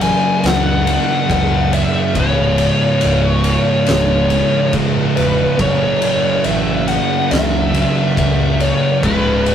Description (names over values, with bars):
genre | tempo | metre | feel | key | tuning
stoner and doom metal | 70 BPM | 4/4 | straight | unclear | A4 = 442 Hz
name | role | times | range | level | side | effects
fuzz lead guitar | melody | 0.0-9.5 s | B4 to G#5 | -18 LUFS | left 2 dB | wah, distortion
soft string machine | sustained chords | 0.0-9.5 s | F#3 to C#5 | -31 LUFS | equal | none
high-gain distorted guitar | riff | 0.0-9.5 s | C#2 to F#4 | -26 LUFS | equal | none
thick fuzz guitar | riff | 0.0-9.5 s | C#2 to F#3 | -21 LUFS | left 6 dB | distortion
thick fuzz guitar | riff | 0.0-9.5 s | C#2 to F#3 | -18 LUFS | right 5 dB | distortion
growling fingered electric bass | bass | 0.0-9.5 s | C#1 to C#2 | -22 LUFS | equal | overdrive
oversized low-tuned drum kit | drums | 0.0-9.5 s | kick drum, ride cymbal, snare drum | -20 LUFS | equal | none
room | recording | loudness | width
moderate studio reverb, RT60 0.5 s | rough rehearsal-room recording, tube saturation | -13 LUFS | side -9 dB against mid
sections
0.0-9.5 A section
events
none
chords
0.0 F#m; 2.2 C#m; 5.6 F#m; 9.0 C#m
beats
0.44 1.30 | 2.16 3.02 3.88 4.74 | 5.60 6.46 7.32 8.18 | 9.04